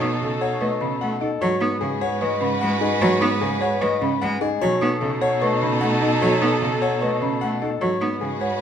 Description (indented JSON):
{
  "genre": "classical, minimalist pattern music",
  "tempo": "150 BPM",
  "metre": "4/4",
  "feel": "straight",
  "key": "B mixolydian",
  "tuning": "A4 = 436 Hz",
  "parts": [
    { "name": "clear concert grand piano", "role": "melody", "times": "0.0-8.6 s", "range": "G#4 to F#5", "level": "-27 LUFS", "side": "left 6 dB", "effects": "none" },
    { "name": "mellow soprano saxophone", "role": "second line", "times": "0.0-8.6 s", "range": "A4 to B4", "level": "-29 LUFS", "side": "right 3 dB", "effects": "none" },
    { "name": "rich cello", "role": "accompaniment", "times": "0.0-8.4 s", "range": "C#3 to B3", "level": "-27 LUFS", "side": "right 1 dB", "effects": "none" },
    { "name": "rich symphonic string section", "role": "sustained chords", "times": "0.0-8.6 s", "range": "D#4 to B4", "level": "-30 LUFS", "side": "equal", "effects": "none" },
    { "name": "folk marimba with soft mallets", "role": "arpeggios", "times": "0.0-8.6 s", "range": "C#4 to C#5", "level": "-26 LUFS", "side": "right 2 dB", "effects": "none" },
    { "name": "large celesta", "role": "arpeggios", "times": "0.0-8.6 s", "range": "D#5 to D#6", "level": "-28 LUFS", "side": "left 2 dB", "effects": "none" },
    { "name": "rich cello", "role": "bass", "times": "0.0-8.6 s", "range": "G#2 to B2", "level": "-27 LUFS", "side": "right 2 dB", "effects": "none" }
  ],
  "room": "moderate recital hall reverb, RT60 1.6 s",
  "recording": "close, detailed microphones",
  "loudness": "-19 LUFS",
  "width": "side -8 dB against mid",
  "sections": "0.0-8.6 A section",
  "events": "none",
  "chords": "0.0 B7; 1.4 G#m7; 4.6 B7; 7.8 G#m7"
}